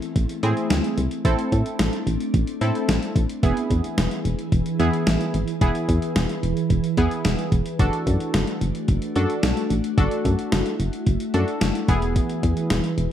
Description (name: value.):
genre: synth-pop.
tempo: 110 BPM.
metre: 4/4.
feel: straight.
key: A harmonic minor.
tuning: A4 = 440 Hz.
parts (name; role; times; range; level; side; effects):
glassy FM pad; sustained chords; 0.0-13.1 s; E3 to B4; -27 LUFS; equal; ensemble chorus, built-in reverb.
gated 80s digital drum machine; drums; 0.0-13.1 s; hi-hat, kick drum, snare drum; -24 LUFS; equal; gated reverb, gated reverb snare.
solid FM bass; bass; 0.2-13.1 s; E1 to A2; -22 LUFS; equal; none.
funky polysynth comp; accompaniment; 0.4-12.8 s; B3 to A4; -26 LUFS; right 1 dB; chorus.
room: light reverb.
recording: rough home demo mix.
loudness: -20 LUFS.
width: side -10 dB against mid.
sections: 0.0-13.1 A section.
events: none.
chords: 0.0 Am; 3.4 E; 7.8 D/F#; 11.9 E.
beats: 0.16 0.70 | 1.25 1.80 2.34 2.89 | 3.43 3.98 4.52 5.07 | 5.61 6.16 6.71 7.25 | 7.80 8.34 8.89 9.43 | 9.98 10.52 11.07 11.61 | 12.16 12.71.